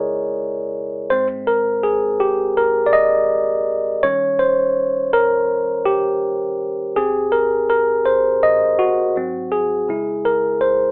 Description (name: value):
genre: R&B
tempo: 82 BPM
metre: 4/4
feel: swing 56% on 16ths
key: Ab major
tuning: A4 = 440 Hz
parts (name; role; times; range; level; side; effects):
- tine electric piano; solo; 0.0-10.9 s; Ab2 to Eb5; -15 LUFS; equal; none
room: moderate studio reverb, RT60 0.6 s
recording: telephone sound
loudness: -15 LUFS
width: side -28 dB against mid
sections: 0.0-10.9 A section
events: tine electric piano solo 0.0-10.9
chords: 0.0 Dbm; 1.1 Ab; 4.0 Eb7; 7.0 Abmaj7; 9.2 Ab7; 9.9 Dbm